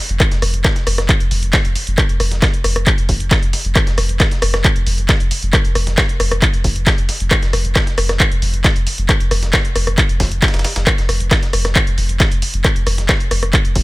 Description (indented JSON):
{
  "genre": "driving peak-time techno",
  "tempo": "135 BPM",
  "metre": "4/4",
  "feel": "straight",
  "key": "unclear",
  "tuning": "A4 = 440 Hz",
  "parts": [
    { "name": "saturated sub bass", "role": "bass", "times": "0.1-13.8 s", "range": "F1", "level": "-19 LUFS", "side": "equal", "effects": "tube saturation, sidechain pumping, low-pass filter" },
    { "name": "punchy analog drum machine", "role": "drums", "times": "0.1-13.8 s", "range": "handclaps, hi-hat, rim click", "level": "-18 LUFS", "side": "equal", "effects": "sidechain pumping on hats, sidechain pumping on cymbals" },
    { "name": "dusty soul sampler-style drum kit", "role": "drums", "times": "0.2-13.8 s", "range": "hi-hat, snare drum", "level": "-27 LUFS", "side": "equal", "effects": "high-pass filter on hats, high-pass filter on snare" },
    { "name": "electronic kick drum", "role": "drums", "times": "0.2-13.8 s", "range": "none", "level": "-16 LUFS", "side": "equal", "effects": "none" }
  ],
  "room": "digital ambience",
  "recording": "none",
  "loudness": "-13 LUFS",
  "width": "side -20 dB against mid",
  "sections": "0.0-13.8 A section",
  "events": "none",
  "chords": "none"
}